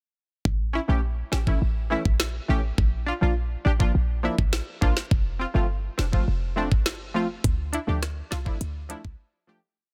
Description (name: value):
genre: dancehall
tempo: 103 BPM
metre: 4/4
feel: straight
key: D minor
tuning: A4 = 440 Hz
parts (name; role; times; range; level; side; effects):
- short 808-style bass; bass; 0.5-9.2 s; F1 to D2; -28 LUFS; equal; none
- afro-pop drum kit; drums; 0.5-9.2 s; hi-hat, kick drum, rim click, snare drum; -27 LUFS; equal; soft clipping on snare
- punchy chord stab; accompaniment; 0.7-9.6 s; E3 to G4; -31 LUFS; equal; chorus
room: little or no reverb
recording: dense, heavily limited modern master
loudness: -25 LUFS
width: mono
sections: 0.5-9.8 verse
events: fade-out 7.4-9.8; break 9.2-9.8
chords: 0.5 A; 2.8 Bb; 5.1 F; 7.4 Dmadd9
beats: | 0.45 1.03 1.62 2.20 | 2.78 3.37 3.95 4.53 | 5.11 5.70 6.28 6.86 | 7.44 8.03 8.61 9.19